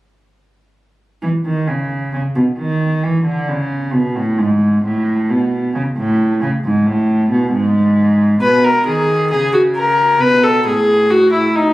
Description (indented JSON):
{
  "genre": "classical, baroque-style fugue for string quartet",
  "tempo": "67 BPM",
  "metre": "4/4",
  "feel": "straight",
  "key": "unclear",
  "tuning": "A4 = 440 Hz",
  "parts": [
    { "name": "warm cello", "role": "bass", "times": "1.2-11.7 s", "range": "G#2 to E3", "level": "-15 LUFS", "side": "right 1 dB", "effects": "none" },
    { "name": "warm viola", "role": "accompaniment", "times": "8.4-11.7 s", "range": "D#4 to B4", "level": "-12 LUFS", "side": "left 1 dB", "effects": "none" }
  ],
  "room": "moderate recital hall reverb, RT60 1.4 s",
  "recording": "recorded on a phone in the room, club reverb, faint mains hum",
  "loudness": "-13 LUFS",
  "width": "side -17 dB against mid",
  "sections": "1.2-11.7 A section",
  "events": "none",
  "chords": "1.2 N.C.; 3.0 E7; 4.8 N.C.; 8.4 B; 10.2 B7(no3)",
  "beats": "| 1.22 2.13 3.04 3.94 | 4.85 5.75 6.64 7.53 | 8.42 9.31 10.21 11.10"
}